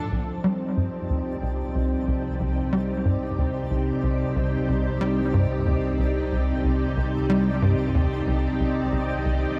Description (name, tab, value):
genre	ambient, sequencer-driven space music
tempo	92 BPM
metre	4/4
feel	straight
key	C dorian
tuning	A4 = 440 Hz
part	string machine, full ensemble	sustained chords	0.0-9.6 s	F3 to A5	-29 LUFS	equal	ensemble chorus, shimmer reverb
part	analog drone	bass	1.1-9.6 s	C2	-31 LUFS	equal	chorus
part	twinkling granular texture	texture	0.0-9.6 s	A4 to A5	-51 LUFS	equal	none
part	tight sequencer bass	riff	0.1-9.5 s	C2 to G3	-27 LUFS	equal	lush chorus, analog delay
room	light reverb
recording	none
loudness	-24 LUFS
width	mono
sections	0.1-9.6 A section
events	none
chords	0.1 Cmadd9